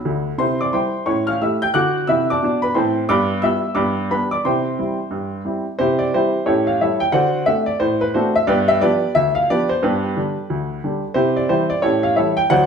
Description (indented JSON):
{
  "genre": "jazz, stride piano",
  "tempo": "178 BPM",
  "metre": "4/4",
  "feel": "swing 62% on 8ths",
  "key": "C major",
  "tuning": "A4 = 438 Hz",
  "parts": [
    { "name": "clear upright piano", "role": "solo", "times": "0.0-12.7 s", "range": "D2 to G6", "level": "-16 LUFS", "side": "equal", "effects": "none" }
  ],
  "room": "wet large studio reverb, RT60 0.8 s",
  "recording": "band playing live in one room",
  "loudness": "-16 LUFS",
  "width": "side -6 dB against mid",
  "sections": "0.0-5.8 A section; 5.8-12.7 A section",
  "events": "upright piano fill 0.0-0.4",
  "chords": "0.4 C; 1.1 A7; 1.7 D7; 3.1 G7; 3.8 G; 4.4 C; 6.5 A7; 7.1 D7; 8.5 G7; 9.8 G; 11.2 C; 11.8 A7",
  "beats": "0.05 | 0.39 0.73 1.07 1.41 | 1.74 2.08 2.42 2.76 | 3.09 3.43 3.77 4.11 | 4.44 4.78 5.12 5.45 | 5.79 6.13 6.46 6.80 | 7.14 7.47 7.81 8.14 | 8.48 8.82 9.15 9.49 | 9.82 10.16 10.50 10.83 | 11.17 11.50 11.84 12.18 | 12.51"
}